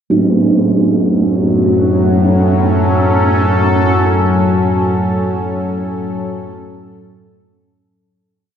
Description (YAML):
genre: dark ambient drone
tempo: free time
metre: none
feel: none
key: unclear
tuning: A4 = 440 Hz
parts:
  - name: sweeping resonant pad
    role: sustained chords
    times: 0.1-8.1 s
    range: A2 to A4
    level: -17 LUFS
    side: left 1 dB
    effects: chorus
  - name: analog drone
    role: drone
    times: 1.0-8.2 s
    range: F#2 to F#3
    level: -16 LUFS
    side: equal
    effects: chorus
  - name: tam-tam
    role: percussion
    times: 0.1-0.3 s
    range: none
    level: -16 LUFS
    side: right 4 dB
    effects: low-pass filter on cymbals
  - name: quartz singing bowl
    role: texture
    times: 0.1-8.1 s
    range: F#3 to F#4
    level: -21 LUFS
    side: left 2 dB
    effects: none
room: wet cathedral reverb, RT60 5.5 s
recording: in a vast, echoing space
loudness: -11 LUFS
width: side -8 dB against mid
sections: 0.1-8.1 A section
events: fade-out 4.1-8.1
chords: 0.1 F#m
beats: free time